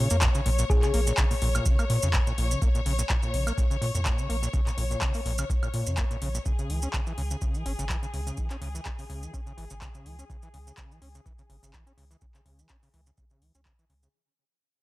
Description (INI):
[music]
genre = acid house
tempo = 125 BPM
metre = 4/4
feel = swing 55% on 16ths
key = unclear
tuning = A4 = 438 Hz
[part]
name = bright studio string section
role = sustained chords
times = 0.0-14.1 s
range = Ab4 to Db5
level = -36 LUFS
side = left 4 dB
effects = sidechain pumping, low-pass filter
[part]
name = overdriven acid bass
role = riff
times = 0.0-14.1 s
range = Bb2 to Db4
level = -34 LUFS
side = equal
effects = distortion, vintage 12-bit sampler grit, tape echo
[part]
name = warm sub bass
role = bass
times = 0.0-14.1 s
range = Ab1 to Bb2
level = -28 LUFS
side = equal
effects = sidechain pumping
[part]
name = electro analog drum machine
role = drums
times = 0.1-14.1 s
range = handclaps, hi-hat, woodblock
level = -33 LUFS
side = left 1 dB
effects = none
[part]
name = maracas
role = percussion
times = 0.1-14.1 s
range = none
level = -37 LUFS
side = right 4 dB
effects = none
[part]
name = electronic kick drum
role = drums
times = 0.2-13.8 s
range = none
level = -27 LUFS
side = equal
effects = none
[part]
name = thumb-piano-like synth pluck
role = melody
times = 0.7-0.9 s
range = Ab4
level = -33 LUFS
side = left 4 dB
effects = chorus, cassette tape, tape echo
[sound]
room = little or no reverb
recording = dry, gritty hardware recording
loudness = -24 LUFS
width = side -18 dB against mid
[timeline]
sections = 0.0-14.1 A section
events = fade-out 0.0-14.1; filter sweep on string section 0.0-14.1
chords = 0.0 Bbm; 6.5 Dbm